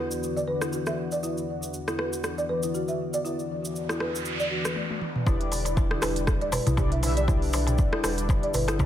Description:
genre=afro house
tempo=119 BPM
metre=4/4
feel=swing 56% on 16ths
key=E minor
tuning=A4 = 441 Hz
part: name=warm analog pad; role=sustained chords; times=0.0-8.9 s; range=E2 to F#4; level=-35 LUFS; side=equal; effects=chorus, tremolo, sidechain pumping
part: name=folk marimba with medium mallets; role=arpeggios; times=0.0-8.9 s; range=E4 to E5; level=-31 LUFS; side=equal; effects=sidechain pumping, tape echo
part: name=mellow synth brass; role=stabs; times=0.0-8.9 s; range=E3 to E5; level=-34 LUFS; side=left 3 dB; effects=chorus, sidechain pumping, tape echo
part: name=cabasa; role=percussion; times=0.1-8.9 s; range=none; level=-39 LUFS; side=right 2 dB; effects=none
part: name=afro-pop drum kit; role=drums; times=0.6-8.8 s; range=hi-hat, rim click, toms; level=-32 LUFS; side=equal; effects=small room ambience
part: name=noise sweep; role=sound effects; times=3.7-5.3 s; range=none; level=-34 LUFS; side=right 2 dB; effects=none
part: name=warm sub bass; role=bass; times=5.3-8.9 s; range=E1 to B1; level=-29 LUFS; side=equal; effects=sidechain pumping
part: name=electronic kick drum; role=drums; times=5.3-8.9 s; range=none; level=-25 LUFS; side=equal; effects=small room ambience
part: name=darbuka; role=percussion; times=5.3-8.9 s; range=none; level=-31 LUFS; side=left 2 dB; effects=none
room=light reverb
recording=none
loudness=-24 LUFS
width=side -11 dB against mid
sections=0.0-5.3 A section; 5.3-8.9 B section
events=filter sweep on analog synth pad 0.0-5.3; noise sweep 3.7-5.3; drum fill 4.8-5.3; drop 5.3-8.9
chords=0.0 Bm/E; 5.3 Em7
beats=0.22 0.73 | 1.23 1.74 2.24 2.74 | 3.25 3.75 4.26 4.76 | 5.26 5.77 6.27 6.78 | 7.28 7.79 8.29 8.79

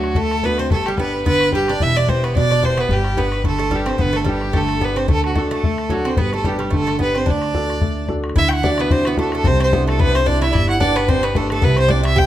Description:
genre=celtic folk, Celtic reel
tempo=220 BPM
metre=4/4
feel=swing 56% on 8ths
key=D mixolydian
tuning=A4 = 440 Hz
part: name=rich fiddle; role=melody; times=0.0-12.3 s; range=F#4 to G5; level=-20 LUFS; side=equal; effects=none
part: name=Irish bouzouki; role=second line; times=0.0-12.3 s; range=F#3 to G4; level=-25 LUFS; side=right 4 dB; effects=none
part: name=clear upright piano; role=accompaniment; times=0.0-12.3 s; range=B2 to B4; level=-23 LUFS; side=right 1 dB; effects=none
part: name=upright bass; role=bass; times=0.0-12.3 s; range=E1 to D2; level=-22 LUFS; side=equal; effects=none
part: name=bodhran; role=percussion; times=0.0-12.2 s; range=none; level=-22 LUFS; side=left 2 dB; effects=none
room=moderate recital hall reverb, RT60 1.6 s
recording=close, detailed microphones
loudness=-15 LUFS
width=side -12 dB against mid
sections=0.0-8.4 A section; 8.4-12.3 B section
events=none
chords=0.0 D; 0.7 G; 1.8 Em; 2.9 G; 5.1 D; 6.2 G; 7.3 D; 8.4 Dadd9; 9.4 Cadd9; 10.5 G; 11.6 C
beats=0.16 0.43 | 0.71 0.98 1.25 1.53 | 1.80 2.08 2.35 2.63 | 2.90 3.17 3.45 3.72 | 4.00 4.27 4.54 4.82 | 5.09 5.36 5.63 5.91 | 6.18 6.45 6.73 7.00 | 7.27 7.54 7.82 8.09 | 8.36 8.63 8.91 9.18 | 9.45 9.72 9.99 10.27 | 10.54 10.81 11.08 11.35 | 11.63 11.90 12.17

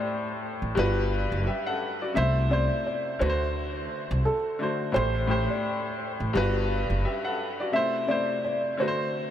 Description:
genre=hip hop, boom-bap hip-hop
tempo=86 BPM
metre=4/4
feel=swing 56% on 16ths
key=unclear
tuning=A4 = 441 Hz
part: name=dark upright piano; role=melody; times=0.0-9.3 s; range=A4 to E5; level=-30 LUFS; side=right 1 dB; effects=diffuse ambient delay
part: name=warm upright piano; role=accompaniment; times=0.0-9.3 s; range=G2 to F#5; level=-28 LUFS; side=left 2 dB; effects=none
part: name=upright bass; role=bass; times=0.6-7.0 s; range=F#1 to D2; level=-26 LUFS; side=equal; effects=none
room=moderate huge ambient reverb, RT60 6.1 s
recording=dreamy mix soaked in reverb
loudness=-24 LUFS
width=side -10 dB against mid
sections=0.0-9.3 A section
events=none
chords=0.0 Am7; 0.8 Gmaj7; 2.2 C6; 3.2 D7; 5.0 Am7; 6.3 Gmaj7; 7.7 C6; 8.8 D7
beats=0.07 0.77 1.46 | 2.16 2.86 3.56 4.25 | 4.95 5.65 6.35 7.04 | 7.74 8.44 9.14

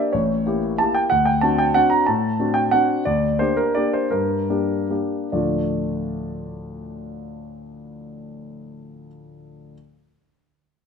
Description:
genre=classical, piano waltz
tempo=132-197 BPM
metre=3/4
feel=rubato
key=D minor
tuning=A4 = 442 Hz
part: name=warm concert grand piano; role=solo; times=0.0-9.8 s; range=A1 to Bb5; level=-20 LUFS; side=equal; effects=none
room=moderate recital hall reverb, RT60 1.6 s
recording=close, detailed microphones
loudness=-18 LUFS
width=side -6 dB against mid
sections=0.0-5.3 A section; 5.3-7.6 B section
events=slowing down 2.5-5.3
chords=0.1 A7b9; 1.1 D7; 3.1 Gm/D; 5.3 Dm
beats=| 0.13 0.46 0.79 | 1.11 1.43 1.76 | 2.08 2.39 2.71 | 3.05 3.39 3.75 | 4.11 4.49 4.90 | 5.33 5.70 6.09 | 6.47 6.85 7.23

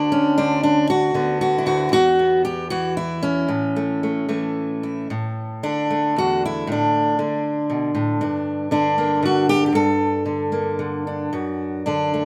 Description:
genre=folk, solo fingerstyle acoustic guitar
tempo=116 BPM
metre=3/4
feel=rubato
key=unclear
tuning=A4 = 444 Hz
part: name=fingerpicked steel-string acoustic guitar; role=solo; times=0.0-12.2 s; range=D2 to A4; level=-21 LUFS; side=equal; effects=none
room=moderate lush hall reverb, RT60 2.5 s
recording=rough home demo mix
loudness=-21 LUFS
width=mono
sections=0.0-5.1 A section; 5.1-12.2 B section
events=none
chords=0.0 D6; 1.9 E5; 3.5 A; 5.1 Asus4; 8.2 Gmadd9; 11.3 D/F#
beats=| 0.39 0.90 1.41 | 1.92 2.44 2.96 | 3.48 4.01 4.55 | 5.10 5.63 6.15 | 6.67 7.18 7.68 | 8.19 8.70 9.21 | 9.73 10.25 10.79 | 11.33 11.86

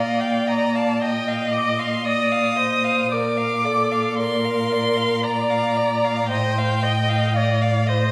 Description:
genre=classical, slow romantic movement for string quartet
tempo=57 BPM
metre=3/4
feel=rubato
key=Bb major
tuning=A4 = 441 Hz
part: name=rich violin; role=melody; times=0.0-7.9 s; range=F5 to Eb6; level=-26 LUFS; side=equal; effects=none
part: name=rich violin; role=second line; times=0.0-8.1 s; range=D5 to F5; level=-30 LUFS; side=equal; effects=none
part: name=warm viola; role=accompaniment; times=0.0-8.1 s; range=A4 to Eb5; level=-26 LUFS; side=equal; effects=none
part: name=warm cello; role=bass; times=0.0-8.1 s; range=A2 to Bb2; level=-26 LUFS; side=equal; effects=none
room=wet recital hall reverb, RT60 1.4 s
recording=recorded in a church or concert hall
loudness=-21 LUFS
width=mono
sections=0.0-8.1 A section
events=none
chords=0.0 Bbadd11; 3.1 Bb; 6.3 F7/A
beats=1.00 2.04 | 3.10 4.17 5.23 | 6.30 7.35

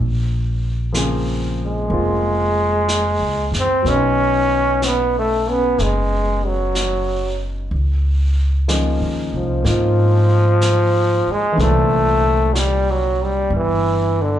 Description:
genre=jazz ballad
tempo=62 BPM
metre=4/4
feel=swing 68% on 8ths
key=Bb minor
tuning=A4 = 440 Hz
part: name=upright bass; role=bass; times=0.0-14.4 s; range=F1 to Ab2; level=-19 LUFS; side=equal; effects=none
part: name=clear concert grand piano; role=accompaniment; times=0.9-14.4 s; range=Bb2 to Ab4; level=-24 LUFS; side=left 2 dB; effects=slapback echo
part: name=vintage brush drum kit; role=drums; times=0.9-14.4 s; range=brushed snare drum, hi-hat, snare drum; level=-29 LUFS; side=equal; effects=none
part: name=brilliant trombone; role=melody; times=1.7-14.4 s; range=D3 to C#4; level=-18 LUFS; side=equal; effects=slapback echo
room=moderate club reverb, RT60 0.8 s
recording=live gig heard through the venue's PA, club reverb, nothing above 11.0 kHz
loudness=-15 LUFS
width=side -11 dB against mid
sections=0.0-14.4 A section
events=none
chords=0.0 Bbm9; 3.8 Badd9; 7.7 Db69; 11.6 C9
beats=0.94 1.91 2.88 | 3.84 4.81 5.78 6.75 | 7.71 8.68 9.65 10.61 | 11.58 12.55 13.51

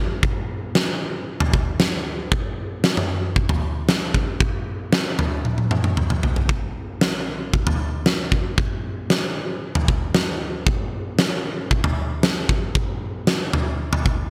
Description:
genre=pop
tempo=115 BPM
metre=4/4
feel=straight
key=none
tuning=none
part: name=huge arena drum kit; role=drums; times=0.2-14.2 s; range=kick drum, snare drum, toms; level=-22 LUFS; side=equal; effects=gated reverb
room=moderate lush hall reverb, RT60 1.8 s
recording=bright 1980s-style digital production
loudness=-22 LUFS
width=mono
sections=0.0-14.3 A section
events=drum fill 5.4-6.5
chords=none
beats=| 0.23 0.75 1.27 1.80 | 2.32 2.84 3.36 3.88 | 4.41 4.93 5.45 5.97 | 6.49 7.01 7.54 8.06 | 8.58 9.10 9.62 10.14 | 10.67 11.19 11.71 12.23 | 12.75 13.27 13.80

